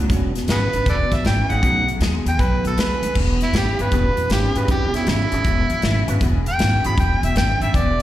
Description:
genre	electric blues shuffle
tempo	157 BPM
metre	4/4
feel	swing 66% on 8ths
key	E mixolydian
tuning	A4 = 441 Hz
part	percussive tonewheel organ	accompaniment	0.0-7.0 s	G#3 to B4	-28 LUFS	right 5 dB	slow rotary speaker, slapback echo
part	electric guitar through a small old amp	riff	0.0-8.0 s	E2 to G#3	-25 LUFS	left 1 dB	ensemble chorus, slapback echo
part	upright bass	bass	0.0-8.0 s	E1 to D#2	-21 LUFS	equal	none
part	natural country drum kit	drums	0.1-8.0 s	crash cymbal, hi-hat, kick drum, snare drum	-23 LUFS	equal	none
part	overdriven harmonica	melody	0.5-8.0 s	E4 to B5	-22 LUFS	right 1 dB	slapback echo
room	little or no reverb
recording	live gig heard through the venue's PA, recital hall reverb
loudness	-17 LUFS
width	side -13 dB against mid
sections	0.0-3.2 A section; 3.2-8.0 B section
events	harmonica solo 3.2-8.0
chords	0.1 E13; 1.6 B13; 3.2 E13

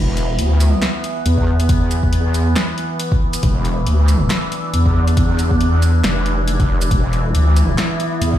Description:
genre	deep dubstep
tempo	138 BPM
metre	4/4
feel	swing 56% on 16ths, half-time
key	unclear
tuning	A4 = 440 Hz
part	overtone-sweeping drone	sustained chords	0.0-8.4 s	E3 to D4	-22 LUFS	equal	chorus, built-in reverb
part	wobble bass	bass	0.0-8.4 s	E1 to E2	-15 LUFS	equal	chorus
part	deep house drum kit	drums	0.2-8.3 s	handclaps, hi-hat, shaker, snare drum	-24 LUFS	equal	overdrive
part	electronic kick drum	drums	1.4-8.4 s	none	-18 LUFS	equal	overdrive
part	wind-like tuned noise texture	texture	7.3-8.4 s	E3 to E4	-25 LUFS	equal	built-in reverb
room	little or no reverb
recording	played on a big sound system in a bare room, stone room reverb, faint mains hum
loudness	-14 LUFS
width	side -12 dB against mid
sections	0.0-8.4 A section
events	none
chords	0.0 E5

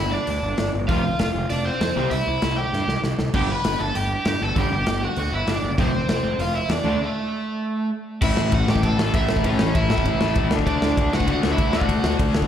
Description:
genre	punk rock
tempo	196 BPM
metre	4/4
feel	straight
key	unclear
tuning	A4 = 436 Hz
part	overdriven semi-hollow guitar	melody	0.0-12.2 s	A3 to B5	-25 LUFS	right 1 dB	slapback echo, tape echo
part	fuzz picked electric bass	bass	0.0-12.5 s	F1 to G2	-25 LUFS	equal	overdrive
part	big rock drum kit	drums	0.3-12.5 s	crash cymbal, hi-hat, kick drum, ride cymbal, snare drum	-24 LUFS	equal	none
part	distorted electric guitar	riff	0.9-12.5 s	F2 to D4	-26 LUFS	left 7 dB	distortion, slapback echo
part	distorted electric guitar	riff	0.9-7.0 s	F2 to D4	-30 LUFS	right 10 dB	distortion, slapback echo
room	studio ambience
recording	live gig heard through the venue's PA, club reverb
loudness	-19 LUFS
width	side -9 dB against mid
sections	0.0-8.2 A section; 8.2-12.5 B section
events	half time 0.0-8.2; drum fill 2.7-3.3; break 7.0-8.2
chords	0.0 G5; 0.9 F5; 2.0 C; 3.3 G; 5.8 F5; 6.9 D5; 8.2 A; 10.5 D

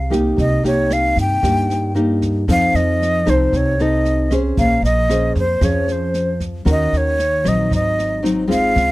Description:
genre	bossa nova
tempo	115 BPM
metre	4/4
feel	straight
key	unclear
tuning	A4 = 440 Hz
part	breathy jazz flute	melody	0.0-8.9 s	C5 to G5	-18 LUFS	equal	none
part	nylon-string guitar	accompaniment	0.0-8.9 s	G2 to C5	-19 LUFS	left 1 dB	none
part	upright bass	bass	0.0-8.9 s	Ab1 to G2	-20 LUFS	equal	none
part	jazz brush drum kit	drums	0.1-8.9 s	kick drum, rim click, snare drum	-25 LUFS	right 1 dB	none
room	little or no reverb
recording	dry, close 1970s-style studio recording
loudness	-15 LUFS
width	side -18 dB against mid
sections	0.4-8.9 A section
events	none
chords	0.4 Cm7; 2.5 F7; 4.6 Bbm9; 6.7 Ebm7; 7.7 Ab7

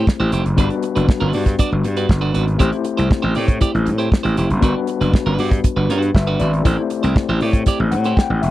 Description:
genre	disco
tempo	119 BPM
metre	4/4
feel	straight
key	A dorian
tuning	A4 = 442 Hz
part	electric guitar at the edge of break-up	accompaniment	0.0-8.3 s	D4 to D5	-22 LUFS	right 5 dB	none
part	overdriven tine electric piano	accompaniment	0.0-8.5 s	G3 to G5	-22 LUFS	left 7 dB	medium tremolo
part	gritty slap bass	bass	0.0-8.5 s	F1 to A2	-18 LUFS	equal	overdrive
part	damped 70s drum kit	drums	0.1-8.5 s	hi-hat, kick drum, snare drum	-15 LUFS	equal	none
room	little or no reverb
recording	dry, close 1970s-style studio recording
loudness	-15 LUFS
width	side -15 dB against mid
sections	0.0-8.5 A section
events	none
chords	0.0 Am7; 0.6 Gmaj7; 2.6 Am7; 4.6 Gmaj7; 6.6 Am7

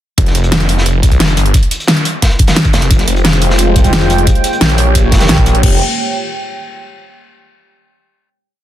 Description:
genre	dark technical drum and bass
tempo	176 BPM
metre	4/4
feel	straight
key	F minor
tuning	A4 = 440 Hz
part	snarling distorted saw bass	bass	0.2-5.8 s	F1 to C2	-12 LUFS	equal	overdrive
part	crunchy breakbeat drum kit	drums	0.2-5.5 s	hi-hat, snare drum	-20 LUFS	equal	high-pass filter on hats, high-pass filter on snare, high-pass filter on room
part	dubstep drum kit	drums	0.2-5.7 s	crash cymbal, hi-hat, snare drum	-15 LUFS	equal	overdrive
part	electronic kick drum	drums	0.2-5.7 s	none	-11 LUFS	equal	none
part	dark analog pad	sustained chords	3.1-5.8 s	Ab3 to G5	-17 LUFS	right 1 dB	chorus, sidechain pumping
room	little or no reverb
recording	dense, heavily limited modern master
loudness	-9 LUFS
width	side -12 dB against mid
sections	0.2-5.6 drop; 5.6-7.0 final chord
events	drop 0.2-5.6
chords	0.2 N.C.; 2.9 Fmadd9; 4.3 Gdim; 5.6 Fmadd9

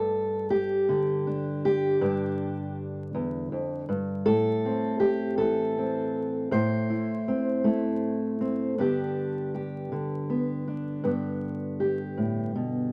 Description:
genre	folk, solo fingerstyle acoustic guitar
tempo	53 BPM (dotted quarters)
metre	6/8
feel	straight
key	G major from 8.8 s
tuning	A4 = 440 Hz
part	fingerpicked steel-string acoustic guitar	solo	0.0-12.9 s	E2 to C5	-28 LUFS	equal	none
room	moderate studio reverb, RT60 0.7 s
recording	vinyl crackle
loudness	-28 LUFS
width	mono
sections	0.0-8.8 A section; 8.8-12.9 B section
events	none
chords	0.0 G5; 4.3 Am; 8.8 G

